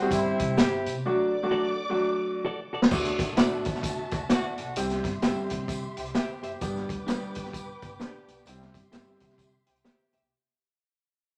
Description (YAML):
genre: uptempo 1960s-style soul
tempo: 130 BPM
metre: 4/4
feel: swing 61% on 8ths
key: unclear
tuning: A4 = 440 Hz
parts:
  - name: muted studio string section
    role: second line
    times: 0.0-10.3 s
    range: F#4 to D6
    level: -41 LUFS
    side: equal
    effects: none
  - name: warm horn section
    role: second line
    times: 0.0-0.9, 4.1-10.3 s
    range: G3 to G4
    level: -35 LUFS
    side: equal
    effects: none
  - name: clear upright piano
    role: accompaniment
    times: 0.0-9.5 s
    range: F#3 to G4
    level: -31 LUFS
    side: equal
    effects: none
  - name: upright bass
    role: bass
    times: 0.0-10.3 s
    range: F#1 to D3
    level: -42 LUFS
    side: equal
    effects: none
  - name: vintage drum kit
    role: drums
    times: 0.1-10.2 s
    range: crash cymbal, hi-hat, kick drum, snare drum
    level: -30 LUFS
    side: equal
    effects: none
  - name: tambourine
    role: percussion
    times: 0.1-10.2 s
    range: none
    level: -51 LUFS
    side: equal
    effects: none
  - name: clean electric guitar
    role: stabs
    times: 0.6-10.2 s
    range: D4 to E5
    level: -37 LUFS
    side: equal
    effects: none
room: wet large studio reverb, RT60 0.9 s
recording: none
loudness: -28 LUFS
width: mono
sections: 0.0-2.9 A section; 2.9-10.3 B section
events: drum fill 2.0-2.9; fade-out 2.9-10.3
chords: 0.0 C; 1.0 D; 2.9 Dadd9; 4.8 C; 6.6 G; 8.5 C